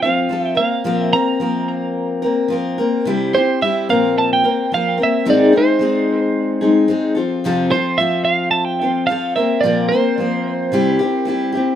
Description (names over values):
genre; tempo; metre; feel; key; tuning
rock; 110 BPM; 4/4; straight; unclear; A4 = 443 Hz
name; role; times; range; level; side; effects
twelve-string electric guitar; melody; 0.0-11.5 s; C5 to Bb5; -18 LUFS; right 4 dB; tape echo
picked steel-string acoustic guitar; accompaniment; 0.0-11.8 s; F2 to Bb4; -16 LUFS; left 2 dB; none
room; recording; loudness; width
light reverb; rough home demo mix; -15 LUFS; side -10 dB against mid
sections
0.0-11.8 A section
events
none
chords
0.0 F; 0.6 Bbsus2; 3.0 C; 3.9 Bbsus2; 5.2 Ab; 7.2 F; 9.4 Bbsus2; 10.7 C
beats
0.30 | 0.85 1.40 1.95 2.50 | 3.05 3.60 4.15 4.70 | 5.25 5.79 6.34 6.89 | 7.43 7.98 8.53 9.08 | 9.62 10.17 10.72 11.27